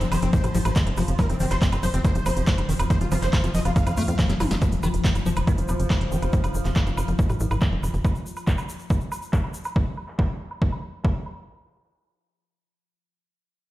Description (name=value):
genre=psychedelic trance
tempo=140 BPM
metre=4/4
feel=straight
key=unclear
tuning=A4 = 439 Hz
part: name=supersaw stab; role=melody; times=0.0-4.5 s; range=C4 to F5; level=-32 LUFS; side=equal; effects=phaser, cassette tape, sidechain pumping, tape echo
part: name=evolving wavetable pad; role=sustained chords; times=0.0-8.1 s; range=F3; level=-33 LUFS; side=left 2 dB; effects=chorus, built-in reverb, phaser, sidechain pumping
part: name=tight sequencer bass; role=bass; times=0.0-8.0 s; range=F1 to F2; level=-24 LUFS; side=equal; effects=none
part: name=big-room dance drum kit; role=drums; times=0.0-11.5 s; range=handclaps, hi-hat, snare drum, toms, woodblock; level=-32 LUFS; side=right 1 dB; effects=overdrive, low-pass filter on hats, low-pass filter on perc, low-pass filter on snare, low-pass filter on toms, low-pass filter on room
part: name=egg shaker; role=percussion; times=0.0-9.7 s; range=none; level=-43 LUFS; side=left 3 dB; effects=none
part: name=liquid acid bass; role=riff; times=0.1-6.2 s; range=Eb3 to A3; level=-30 LUFS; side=left 2 dB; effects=chorus, auto-pan, sidechain pumping, dub echo
part: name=electronic kick drum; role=drums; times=0.3-11.1 s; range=none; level=-22 LUFS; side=equal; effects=overdrive
part: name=vowel-sweep wobble bass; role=second line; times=1.0-3.7 s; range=F3 to F4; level=-38 LUFS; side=right 1 dB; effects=lush chorus, sidechain pumping, high-pass filter, tape echo
part: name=warbly tape-like pad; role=texture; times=5.1-6.3 s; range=F4 to C5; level=-37 LUFS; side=left 3 dB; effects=chorus, built-in reverb, phaser, sidechain pumping
room=light reverb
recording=played on a big sound system in a bare room, stone room reverb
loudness=-21 LUFS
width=side -16 dB against mid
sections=0.0-4.6 A section; 4.6-11.5 B section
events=drop 0.0-4.6; drum fill 4.3-4.6; filter sweep on drum 4.6-11.5; filter sweep on acid bass 4.6-6.3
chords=0.0 F5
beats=0.33 0.76 | 1.19 1.62 2.04 2.47 | 2.90 3.33 3.76 4.19 | 4.62 5.04 5.47 5.90 | 6.33 6.76 7.19 7.62 | 8.04 8.47 8.90 9.33 | 9.76 10.19 10.62 11.04